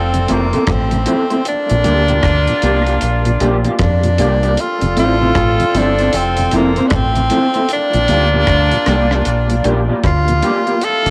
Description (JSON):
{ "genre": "dub reggae", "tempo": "77 BPM", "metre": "4/4", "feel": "swing 62% on 16ths", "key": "unclear", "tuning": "A4 = 440 Hz", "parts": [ { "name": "edgy tenor saxophone", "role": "melody", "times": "0.0-11.1 s", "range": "Bb3 to A4", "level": "-19 LUFS", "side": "equal", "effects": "cassette tape, dub echo" }, { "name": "clear horn section", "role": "second line", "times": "0.0-11.1 s", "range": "F3 to A4", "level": "-26 LUFS", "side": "equal", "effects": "cassette tape, dub echo" }, { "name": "deep dub fingered electric bass", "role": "bass", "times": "0.0-11.1 s", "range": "F1 to F2", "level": "-19 LUFS", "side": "equal", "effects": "none" }, { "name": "mellow tonewheel organ", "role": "accompaniment", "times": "0.1-11.1 s", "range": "F2 to E4", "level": "-26 LUFS", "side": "equal", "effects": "overdrive, chorus vibrato, slow rotary speaker, cassette tape, dub echo" }, { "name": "deep reggae drum kit", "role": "drums", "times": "0.1-11.1 s", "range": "hi-hat, kick drum, rim click", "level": "-23 LUFS", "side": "equal", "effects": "none" }, { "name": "electric guitar through a small old amp", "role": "accompaniment", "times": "0.3-10.7 s", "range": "Bb3 to D5", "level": "-22 LUFS", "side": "equal", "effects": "analog chorus, cassette tape, dub echo" } ], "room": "light reverb, small room ambience", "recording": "home recording on cassette", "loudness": "-14 LUFS", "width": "mono", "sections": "0.0-11.1 A section", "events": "none", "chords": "0.0 Fmaj7; 1.5 Bb6; 4.6 Fmaj7; 7.7 Bb6" }